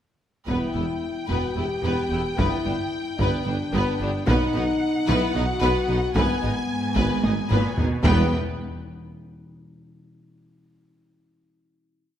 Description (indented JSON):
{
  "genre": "cinematic, epic orchestral film score",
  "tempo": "222 BPM (eighths)",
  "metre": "7/8",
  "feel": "straight",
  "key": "E minor",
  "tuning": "A4 = 440 Hz",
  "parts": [
    { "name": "rich symphonic violin section", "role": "melody", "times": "0.5-8.3 s", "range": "F#5 to G#5", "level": "-33 LUFS", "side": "left 2 dB", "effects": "none" },
    { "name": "clear symphonic violin section", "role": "second line", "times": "0.5-8.3 s", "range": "D4 to B4", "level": "-30 LUFS", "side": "left 4 dB", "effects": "none" },
    { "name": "warm studio viola section", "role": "accompaniment", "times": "0.5-8.3 s", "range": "B3", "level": "-31 LUFS", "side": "right 2 dB", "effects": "none" },
    { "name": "mellow French horn section", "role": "sustained chords", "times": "0.5-8.3 s", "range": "B3 to G4", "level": "-28 LUFS", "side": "left 2 dB", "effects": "none" },
    { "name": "mellow trombone section", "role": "sustained chords", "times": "0.5-8.3 s", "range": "D#3 to B3", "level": "-34 LUFS", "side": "right 3 dB", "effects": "none" },
    { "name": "mellow tuba", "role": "bass", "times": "0.5-8.3 s", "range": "E1 to B1", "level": "-30 LUFS", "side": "right 2 dB", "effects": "none" },
    { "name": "rich symphonic cello section", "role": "bass", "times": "0.5-8.3 s", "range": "E2 to B2", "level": "-30 LUFS", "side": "right 2 dB", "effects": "none" },
    { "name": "rich symphonic double bass section", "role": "bass", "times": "0.5-8.3 s", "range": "E1 to B1", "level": "-29 LUFS", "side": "right 2 dB", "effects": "none" },
    { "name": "solo taiko drums", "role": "drums", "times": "0.5-9.1 s", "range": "none", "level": "-26 LUFS", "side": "equal", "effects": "none" },
    { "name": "timpani", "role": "percussion", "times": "4.3-5.0, 8.0-8.3 s", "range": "E2 to B2", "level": "-30 LUFS", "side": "left 1 dB", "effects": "none" }
  ],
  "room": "moderate scoring stage reverb, RT60 1.6 s",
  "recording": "none",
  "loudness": "-21 LUFS",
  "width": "side -10 dB against mid",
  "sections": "0.5-8.0 theme; 8.0-9.9 final chord",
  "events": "drum fill 7.2-8.0",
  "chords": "0.5 Em; 2.4 G; 4.3 B; 6.2 G#m; 8.0 E5",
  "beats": "| 0.48 0.75 1.02 1.30 1.57 1.84 2.11 | 2.38 2.65 2.92 3.19 3.46 3.73 4.00 | 4.27 4.54 4.81 5.08 5.35 5.62 5.89 | 6.16 6.43 6.70 6.97 7.24 7.51 7.78 | 8.04 8.31 8.58 8.85"
}